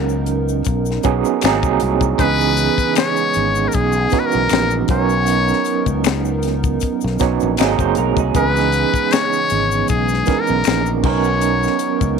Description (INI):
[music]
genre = R&B, neo-soul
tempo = 78 BPM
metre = 4/4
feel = swing 55% on 16ths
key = C# dorian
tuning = A4 = 440 Hz
[part]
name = overdriven tine electric piano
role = accompaniment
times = 0.0-12.2 s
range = E3 to C#5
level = -19 LUFS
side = right 14 dB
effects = medium tremolo
[part]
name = hollow soft pad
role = sustained chords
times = 0.0-12.2 s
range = C#3 to A#4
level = -28 LUFS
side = left 2 dB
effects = chorus
[part]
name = fretless electric bass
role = bass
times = 0.0-12.2 s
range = F#1 to C#2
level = -21 LUFS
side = left 2 dB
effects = none
[part]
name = tube shaker and finger snaps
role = percussion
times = 0.1-12.2 s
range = none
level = -30 LUFS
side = left 17 dB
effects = none
[part]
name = tight funk drum kit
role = drums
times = 0.3-12.2 s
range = crash cymbal, finger snaps, hi-hat, kick drum, snare drum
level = -20 LUFS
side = left 6 dB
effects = none
[part]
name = trumpet with metal mute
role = melody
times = 2.2-12.2 s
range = G#4 to C#5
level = -19 LUFS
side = left 4 dB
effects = none
[part]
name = electric guitar through a small old amp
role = second line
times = 7.6-8.6 s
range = D#4 to D#5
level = -25 LUFS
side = right 12 dB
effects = wide subtle chorus
[sound]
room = light reverb, small room ambience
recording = 1960s-style stereo with parts hard left and right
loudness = -14 LUFS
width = side -6 dB against mid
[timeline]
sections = 0.0-12.2 A section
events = none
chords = 0.0 Bmaj9; 1.4 G#7; 2.2 C#m7; 4.9 Bmaj9; 7.6 G#7; 8.3 C#m7; 11.0 Bmaj9